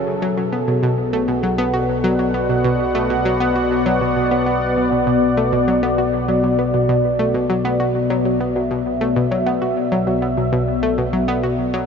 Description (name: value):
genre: ambient, sequencer-driven space music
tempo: 99 BPM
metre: 4/4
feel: straight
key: unclear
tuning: A4 = 444 Hz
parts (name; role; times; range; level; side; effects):
- sweeping resonant pad; sustained chords; 0.0-11.9 s; B2 to F#5; -18 LUFS; left 1 dB; chorus
- analog pluck; riff; 0.0-11.8 s; B2 to F#4; -20 LUFS; equal; chorus, analog delay
- analog drone; bass; 1.0-11.9 s; B1; -30 LUFS; equal; chorus
room: wet huge ambient reverb, RT60 7.4 s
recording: nothing above 7.7 kHz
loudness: -16 LUFS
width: side -6 dB against mid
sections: 0.0-11.9 A section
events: none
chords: 0.1 Bm